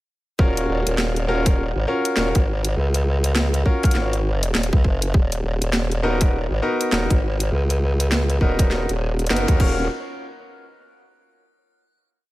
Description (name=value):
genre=glitch hop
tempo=101 BPM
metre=4/4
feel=swing 61% on 16ths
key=Eb minor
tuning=A4 = 440 Hz
part: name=bright baby grand piano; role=stabs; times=0.4-9.8 s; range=Cb4 to Bb4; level=-24 LUFS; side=left 1 dB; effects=sidechain pumping, tape echo
part: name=formant-sweep wobble bass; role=bass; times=0.4-9.9 s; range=Eb1 to Eb2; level=-21 LUFS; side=equal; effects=chorus, overdrive
part: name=electronic kick drum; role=drums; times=0.4-9.7 s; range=none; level=-17 LUFS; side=equal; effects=overdrive, small room ambience
part: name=drum and bass drum kit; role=drums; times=0.6-9.7 s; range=crash cymbal, hi-hat, rim click, snare drum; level=-25 LUFS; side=equal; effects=overdrive, small room ambience
room=digital ambience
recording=none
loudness=-18 LUFS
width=side -17 dB against mid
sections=0.4-9.9 drop; 9.9-12.3 final hit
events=drop 0.4-9.9; band accent 9.3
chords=0.4 Ebm9; 5.1 Abm9/Eb (rootless); 9.6 Ebm9; 9.9 N.C.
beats=| 0.39 0.99 1.58 2.17 | 2.77 3.36 3.96 4.55 | 5.14 5.74 6.33 6.93 | 7.52 8.11 8.71 9.30